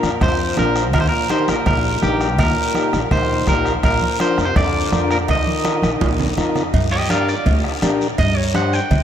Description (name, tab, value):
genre	latin, cumbia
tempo	166 BPM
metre	4/4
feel	straight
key	Eb major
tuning	A4 = 439 Hz
part	electric guitar at the edge of break-up	melody	0.0-9.0 s	G4 to G5	-21 LUFS	right 2 dB	spring reverb, ping-pong delay
part	warm trombone	second line	0.0-6.3 s	G2 to F3	-26 LUFS	left 3 dB	ping-pong delay
part	combo organ	accompaniment	0.0-8.8 s	D4 to C5	-23 LUFS	left 3 dB	none
part	upright bass	bass	0.0-9.0 s	Bb1 to Bb2	-22 LUFS	equal	none
part	bombo	percussion	0.0-9.0 s	none	-22 LUFS	equal	none
part	congas	percussion	0.0-9.0 s	none	-27 LUFS	right 2 dB	none
part	guiro	percussion	0.0-9.0 s	none	-31 LUFS	left 5 dB	none
part	cowbell and timbales	percussion	0.2-9.0 s	none	-29 LUFS	right 5 dB	none
room	moderate huge ambient reverb, RT60 7.7 s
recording	dreamy mix soaked in reverb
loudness	-15 LUFS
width	side -9 dB against mid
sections	0.0-6.7 A section; 6.7-9.0 B section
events	drum fill 5.7-6.7; clean electric guitar solo 6.7-9.0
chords	0.0 Bb; 0.9 Eb; 3.8 Bb; 5.3 Ebsus2; 6.7 Gm